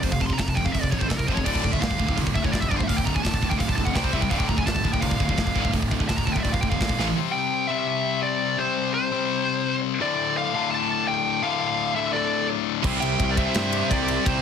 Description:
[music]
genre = heavy metal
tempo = 169 BPM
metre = 4/4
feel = straight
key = D minor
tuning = A4 = 440 Hz
[part]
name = high-gain lead guitar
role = melody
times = 0.0-14.4 s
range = A4 to C6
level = -27 LUFS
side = equal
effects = distortion, tape echo
[part]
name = heavy high-gain guitar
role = riff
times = 0.0-7.2, 12.8-14.4 s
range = D2 to C4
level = -29 LUFS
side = right 11 dB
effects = distortion
[part]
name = high-gain distorted guitar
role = riff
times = 0.0-14.4 s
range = D2 to C4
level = -27 LUFS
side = left 12 dB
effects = distortion
[part]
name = fuzz picked electric bass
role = bass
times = 0.0-7.1, 12.8-14.4 s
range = D1 to G2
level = -29 LUFS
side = equal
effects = overdrive
[part]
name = tight metal drum kit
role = drums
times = 0.0-7.1, 12.8-14.3 s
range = crash cymbal, hi-hat, kick drum, ride cymbal, snare drum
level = -26 LUFS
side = equal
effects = none
[part]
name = high-gain distorted guitar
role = riff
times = 1.5-7.2, 12.8-14.4 s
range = D2 to C5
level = -31 LUFS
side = right 1 dB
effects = distortion
[part]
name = high-gain lead guitar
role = second line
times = 12.1-14.4 s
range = G4 to E5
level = -33 LUFS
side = right 4 dB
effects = distortion
[sound]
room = little or no reverb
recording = dense, heavily limited modern master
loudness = -21 LUFS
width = side -7 dB against mid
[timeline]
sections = 0.0-7.2 A section; 7.2-14.4 B section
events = lead electric guitar solo 0.0-7.2; drum fill 7.0; half time 7.2-14.4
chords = 0.0 F5; 1.5 Dm; 4.0 C5; 4.3 Dm; 7.0 A5; 7.2 C5; 10.0 Dm; 12.8 C

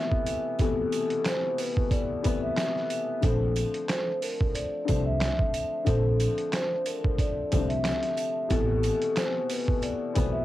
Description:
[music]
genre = hip hop, boom-bap hip-hop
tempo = 91 BPM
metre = 4/4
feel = swing 55% on 16ths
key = A minor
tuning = A4 = 437 Hz
[part]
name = vibraphone with soft mallets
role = melody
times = 0.0-10.4 s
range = A4 to E5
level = -29 LUFS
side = right 1 dB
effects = high-pass filter, low-pass filter
[part]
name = dark upright piano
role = accompaniment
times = 0.0-10.4 s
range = B2 to C4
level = -32 LUFS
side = left 8 dB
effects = high-pass filter, low-pass filter, cassette tape
[part]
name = trip hop sampler-style drum kit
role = drums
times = 0.1-10.3 s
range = handclaps, hi-hat, kick drum, snare drum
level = -28 LUFS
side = right 1 dB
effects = cassette tape
[part]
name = sleigh bells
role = percussion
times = 0.3-10.3 s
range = none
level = -44 LUFS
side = right 11 dB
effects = none
[part]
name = upright bass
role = bass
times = 3.2-10.4 s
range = A1 to C2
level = -28 LUFS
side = right 1 dB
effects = tube saturation
[sound]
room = light reverb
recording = home recording on cassette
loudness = -25 LUFS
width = side -14 dB against mid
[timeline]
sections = 0.0-10.4 A section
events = break 0.0-3.2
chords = 0.0 Amadd9; 3.2 Bbmaj9; 8.5 Amadd9

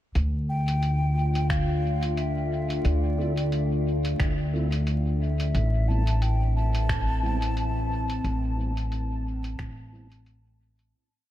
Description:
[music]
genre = ambient dub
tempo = 89 BPM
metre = 4/4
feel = swing 56% on 16ths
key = A minor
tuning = A4 = 439 Hz
[part]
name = warbly tape-like pad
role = sustained chords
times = 0.1-10.9 s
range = A2 to F4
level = -32 LUFS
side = left 1 dB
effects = chorus, built-in reverb
[part]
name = upright bass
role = bass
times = 0.2-10.9 s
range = A1 to D2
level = -25 LUFS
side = equal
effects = tube saturation
[part]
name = lo-fi sampler-style drum kit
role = drums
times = 0.2-10.9 s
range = finger snaps, hi-hat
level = -37 LUFS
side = equal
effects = dub echo
[part]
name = mellow hollow concert flute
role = melody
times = 0.5-10.2 s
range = D5 to A5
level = -34 LUFS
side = left 1 dB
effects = dub echo
[part]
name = electronic kick drum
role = drums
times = 1.5-9.7 s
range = none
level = -30 LUFS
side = equal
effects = none
[part]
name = mellow tonewheel organ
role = stabs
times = 3.2-10.1 s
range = G3 to A4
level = -39 LUFS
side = right 2 dB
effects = none
[sound]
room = light reverb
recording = vinyl crackle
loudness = -23 LUFS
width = side -13 dB against mid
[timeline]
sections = 0.2-10.9 groove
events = fade-out 7.3-10.9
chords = 0.2 Dm; 5.5 Am

